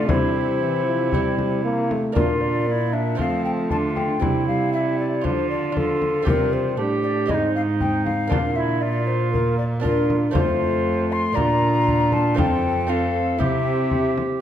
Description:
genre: classical, renaissance-style consort dance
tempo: 117 BPM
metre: 4/4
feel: straight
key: C mixolydian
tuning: A4 = 440 Hz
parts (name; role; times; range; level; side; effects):
- mellow hollow tenor recorder; melody; 0.0-14.2 s; A4 to C6; -25 LUFS; left 5 dB; none
- tenor recorder; second line; 0.0-14.4 s; C4 to A4; -26 LUFS; right 4 dB; none
- lute; accompaniment; 0.0-14.4 s; F2 to E5; -29 LUFS; right 6 dB; none
- warm trombone; accompaniment; 0.0-14.4 s; E3 to D4; -26 LUFS; left 1 dB; none
- rich cello; bass; 0.0-14.4 s; F2 to F3; -25 LUFS; right 2 dB; none
- frame drum; percussion; 0.1-14.4 s; none; -26 LUFS; left 2 dB; none
room: wet recital hall reverb, RT60 1.4 s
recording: none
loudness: -19 LUFS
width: side -10 dB against mid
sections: 0.0-2.2 A section; 2.2-14.4 B section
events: none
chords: 0.1 C; 2.2 Bb; 3.2 F; 4.2 C; 5.2 Dm; 6.3 C; 7.3 Ab; 8.3 Bb; 10.3 F; 11.4 Bb; 12.4 F; 13.4 C

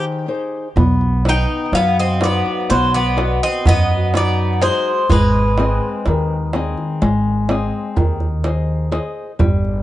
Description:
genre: greek folk, Greek bouzouki band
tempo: 125 BPM (eighths)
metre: 9/8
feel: straight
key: unclear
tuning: A4 = 439 Hz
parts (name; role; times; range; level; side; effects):
- Greek bouzouki; melody; 0.0-7.9 s; B4 to G5; -20 LUFS; equal; analog delay
- nylon-string guitar; accompaniment; 0.0-9.8 s; Eb3 to D#5; -21 LUFS; left 3 dB; none
- upright bass; bass; 0.8-9.8 s; G1 to F#2; -19 LUFS; right 1 dB; none
- darbuka; percussion; 0.8-9.8 s; none; -19 LUFS; right 2 dB; none
- Greek bouzouki; second line; 1.3-7.9 s; F#3 to D#4; -24 LUFS; equal; analog delay
room: light reverb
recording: dark, warm production, nothing above 11.0 kHz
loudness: -15 LUFS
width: side -14 dB against mid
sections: 0.8-9.8 A section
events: break 0.0-0.8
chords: 0.0 Ab; 0.8 B; 5.1 Ab

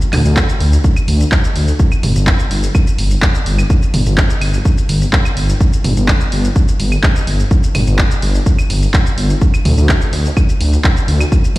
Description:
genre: melodic techno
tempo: 126 BPM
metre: 4/4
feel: straight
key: unclear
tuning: A4 = 440 Hz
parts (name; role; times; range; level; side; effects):
- punchy analog drum machine; drums; 0.0-11.6 s; claves, handclaps, hi-hat, shaker, toms; -19 LUFS; equal; none
- swelling detuned saw bass; bass; 0.1-11.6 s; G1 to D2; -13 LUFS; equal; sidechain pumping
- electronic kick drum; drums; 0.4-11.4 s; none; -12 LUFS; equal; none
room: little or no reverb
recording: played on a big sound system in a bare room, stone room reverb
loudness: -11 LUFS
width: side -18 dB against mid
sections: 0.0-11.6 A section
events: none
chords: none

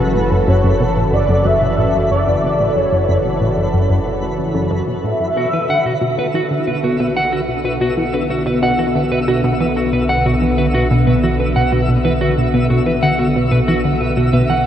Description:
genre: ambient, sequencer-driven space music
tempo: 92 BPM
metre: 4/4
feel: straight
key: unclear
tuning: A4 = 440 Hz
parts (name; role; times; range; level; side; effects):
- expressive synth lead; melody; 0.0-6.6 s; A4 to E5; -20 LUFS; equal; ensemble chorus, analog delay
- lush unison pad; sustained chords; 0.0-14.7 s; C#3 to A4; -20 LUFS; equal; chorus
- tight sequenced synth; riff; 0.0-14.6 s; F#2 to E3; -18 LUFS; equal; chorus, phaser, analog delay
- analog drone; bass; 0.0-14.7 s; F#1 to B1; -24 LUFS; equal; chorus
- twinkling granular texture; texture; 0.0-14.7 s; B4 to E5; -29 LUFS; left 2 dB; built-in reverb
- clean electric guitar; arpeggios; 5.4-14.7 s; F#4 to F#5; -19 LUFS; right 1 dB; auto-pan, analog delay
room: wet huge ambient reverb, RT60 8.9 s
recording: worn, warbling old tape, cassette tape, warbly pitch drift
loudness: -14 LUFS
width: side -10 dB against mid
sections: 0.0-14.7 A section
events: filter sweep on synth arpeggio sound 0.0-14.7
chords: 0.0 F#m7; 5.4 Bm7

